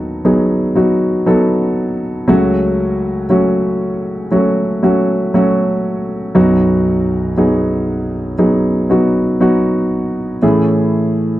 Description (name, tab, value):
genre	pop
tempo	59 BPM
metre	4/4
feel	straight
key	unclear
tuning	A4 = 440 Hz
part	warm concert grand piano	solo	0.0-11.4 s	B1 to A4	-12 LUFS	equal	none
room	little or no reverb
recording	dry, close 1970s-style studio recording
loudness	-12 LUFS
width	side -15 dB against mid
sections	0.0-10.4 A section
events	none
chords	0.0 B/D#; 2.3 F#m/C#; 6.4 B; 10.4 Amaj7